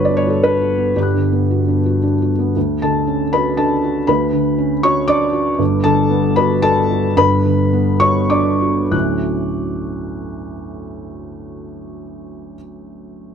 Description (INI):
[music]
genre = neoclassical minimalist piano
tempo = 96-119 BPM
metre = 3/4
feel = rubato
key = D major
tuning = A4 = 437 Hz
[part]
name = felt-muted upright piano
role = solo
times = 0.0-13.3 s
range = G1 to F#6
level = -15 LUFS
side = equal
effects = none
[sound]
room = light reverb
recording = none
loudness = -14 LUFS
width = side -7 dB against mid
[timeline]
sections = 0.0-2.6 A section; 2.6-8.9 B section; 8.9-12.6 C section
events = slowing down 4.8-8.9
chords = 0.0 Gmaj7; 2.6 Dmaj7; 5.6 Gmaj7; 8.9 Dmaj7